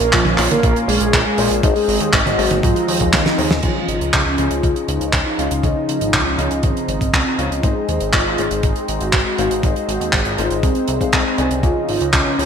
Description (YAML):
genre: italo disco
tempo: 120 BPM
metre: 4/4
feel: straight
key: Db major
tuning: A4 = 440 Hz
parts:
  - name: mellow synth brass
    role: melody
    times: 0.0-12.5 s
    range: Eb3 to Bb4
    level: -21 LUFS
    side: equal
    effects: chorus, ping-pong delay
  - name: lush unison pad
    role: sustained chords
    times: 0.0-12.5 s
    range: Db3 to F4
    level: -25 LUFS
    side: equal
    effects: chorus, phaser
  - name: dark grand piano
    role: stabs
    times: 0.0-12.5 s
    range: Bb2 to F5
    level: -26 LUFS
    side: left 5 dB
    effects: lush chorus
  - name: chorused synth bass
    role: bass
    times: 0.0-12.5 s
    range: Ab1 to Ab2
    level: -23 LUFS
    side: equal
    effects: none
  - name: damped 70s drum kit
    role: drums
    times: 0.0-12.5 s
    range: crash cymbal, handclaps, hi-hat, snare drum, toms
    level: -19 LUFS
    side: right 1 dB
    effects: studio reverb, gated reverb
  - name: electronic kick drum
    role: drums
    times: 0.1-12.2 s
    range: none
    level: -19 LUFS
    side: equal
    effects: studio reverb
room: moderate lush hall reverb, RT60 2.5 s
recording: bright 1980s-style digital production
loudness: -15 LUFS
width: side -7 dB against mid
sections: 0.0-3.6 A section; 3.6-12.5 B section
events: drum fill 3.1-3.6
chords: 0.0 Bbm; 1.6 Ab; 3.6 Dbadd9; 7.6 Ab; 11.6 Dbadd9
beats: 0.14 0.64 1.14 | 1.64 2.13 2.63 3.13 | 3.63 4.13 4.63 5.13 | 5.63 6.13 6.63 7.13 | 7.63 8.13 8.63 9.13 | 9.63 10.13 10.63 11.13 | 11.63 12.13